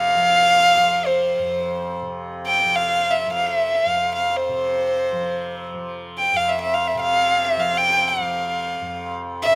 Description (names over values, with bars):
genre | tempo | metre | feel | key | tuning
indian classical, Hindustani | free time | none | none | unclear | A4 = 441 Hz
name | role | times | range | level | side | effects
rich violin | melody | 0.0-9.6 s | C5 to G5 | -20 LUFS | equal | none
tanpura | drone | 0.0-9.6 s | F2 to F3 | -32 LUFS | equal | none
room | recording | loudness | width
light reverb, small room ambience | rough home demo mix | -20 LUFS | mono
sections
0.0-9.6 A section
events
none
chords
none